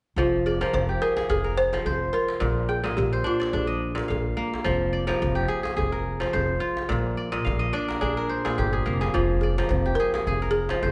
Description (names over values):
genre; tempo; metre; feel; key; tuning
west african traditional, West African string and xylophone music; 107 BPM; 4/4; swing 54% on 16ths; F dorian; A4 = 440 Hz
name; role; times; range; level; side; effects
balafon; melody; 0.2-4.3, 9.1-10.9 s; F4 to C5; -29 LUFS; equal; none
kora; arpeggios; 0.2-10.9 s; Bb2 to G5; -29 LUFS; equal; none
upright bass; bass; 0.2-10.9 s; F1 to Bb1; -31 LUFS; equal; none
djembe; percussion; 0.2-10.9 s; none; -34 LUFS; equal; none
room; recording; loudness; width
moderate recital hall reverb, RT60 1.4 s; recorded in a church or concert hall, nothing above 11.0 kHz; -25 LUFS; mono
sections
0.2-10.9 A section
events
kora fill 7.2-9.1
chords
0.2 Fm; 2.4 Bb; 4.7 Fm